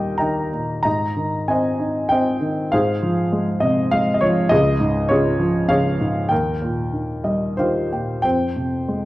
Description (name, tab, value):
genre	classical, lyrical solo piano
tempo	88-103 BPM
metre	3/4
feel	rubato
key	unclear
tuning	A4 = 439 Hz
part	dark grand piano	solo	0.0-9.1 s	Db2 to Bb5	-18 LUFS	equal	none
room	moderate recital hall reverb, RT60 1.6 s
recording	dark, warm production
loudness	-17 LUFS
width	side -17 dB against mid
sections	0.0-8.2 A section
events	grand piano fill 6.9-8.2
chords	0.0 Eb; 0.9 Ab; 2.7 Fm/Ab; 4.5 Db; 6.3 Ebadd9; 8.2 Fm